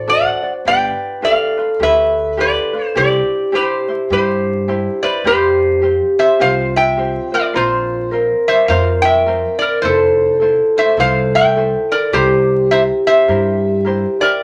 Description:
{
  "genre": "Hawaiian",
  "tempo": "105 BPM",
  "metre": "4/4",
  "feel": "swing 61% on 8ths",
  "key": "C major, F major from 5.3 s",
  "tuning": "A4 = 440 Hz",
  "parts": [
    { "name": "metal-body resonator slide guitar", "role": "melody", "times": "0.0-14.4 s", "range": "F4 to G5", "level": "-17 LUFS", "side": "equal", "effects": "none" },
    { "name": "vibraphone with medium mallets", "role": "second line", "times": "0.0-14.2 s", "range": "F4 to C5", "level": "-19 LUFS", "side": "equal", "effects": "none" },
    { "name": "ukulele", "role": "accompaniment", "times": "0.0-14.4 s", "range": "C4 to D5", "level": "-27 LUFS", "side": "equal", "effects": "none" },
    { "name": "upright bass", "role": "bass", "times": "0.0-14.0 s", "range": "F1 to G2", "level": "-24 LUFS", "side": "equal", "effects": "none" }
  ],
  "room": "moderate studio reverb, RT60 0.6 s",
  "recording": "vinyl crackle",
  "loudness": "-15 LUFS",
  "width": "mono",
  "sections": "0.0-5.3 A section; 5.3-14.4 B section",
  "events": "none",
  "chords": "0.0 D; 0.7 G7; 3.0 Cadd9; 5.3 Fsus2; 7.5 Bbsus2; 9.8 Fmaj7; 12.1 C7"
}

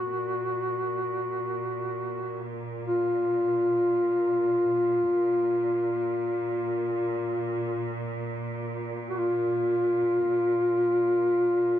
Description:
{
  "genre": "caucasian folk, Caucasian lament",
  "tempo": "free time",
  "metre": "none",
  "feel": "none",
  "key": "unclear",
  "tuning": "A4 = 442 Hz",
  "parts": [
    { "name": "dark duduk", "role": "melody", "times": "0.0-11.8 s", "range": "F4 to Gb4", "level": "-24 LUFS", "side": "left 1 dB", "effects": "none" },
    { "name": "muted chamber cello section", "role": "drone", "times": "0.0-11.8 s", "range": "Bb2", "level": "-34 LUFS", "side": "right 2 dB", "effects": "none" }
  ],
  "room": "moderate studio reverb, RT60 0.6 s",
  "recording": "band playing live in one room, nothing above 7.7 kHz",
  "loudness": "-24 LUFS",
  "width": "side -11 dB against mid",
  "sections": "0.0-11.8 A section",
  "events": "none",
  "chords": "none"
}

